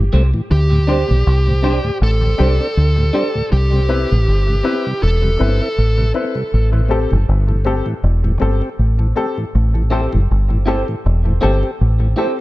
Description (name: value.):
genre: reggae.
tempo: 80 BPM.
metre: 4/4.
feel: swing 57% on 16ths.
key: A minor.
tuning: A4 = 440 Hz.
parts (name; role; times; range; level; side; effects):
mellow tonewheel organ; accompaniment; 0.0-12.3 s; D2 to G4; -24 LUFS; equal; slow rotary speaker.
deep dub fingered electric bass; bass; 0.0-12.1 s; E1 to D2; -14 LUFS; equal; none.
electric guitar at the edge of break-up; accompaniment; 0.1-3.3, 9.9-12.3 s; D4 to C5; -25 LUFS; right 4 dB; wide subtle chorus, high-pass filter, dub echo.
smooth overdriven lead guitar; melody; 0.5-6.1 s; G4 to A4; -22 LUFS; right 1 dB; dub echo.
warm upright piano; stabs; 0.9-12.4 s; C4 to C5; -23 LUFS; left 4 dB; dub echo.
room: little or no reverb.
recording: dark, warm production.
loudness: -14 LUFS.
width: side -18 dB against mid.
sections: 0.5-12.4 A section.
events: break 0.0-0.5.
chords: 0.5 D7sus4; 3.5 Cmaj7; 6.5 Am7.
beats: | 0.50 1.25 2.00 2.76 | 3.51 4.26 5.02 5.77 | 6.52 7.28 8.03 8.78 | 9.54 10.29 11.04 11.80.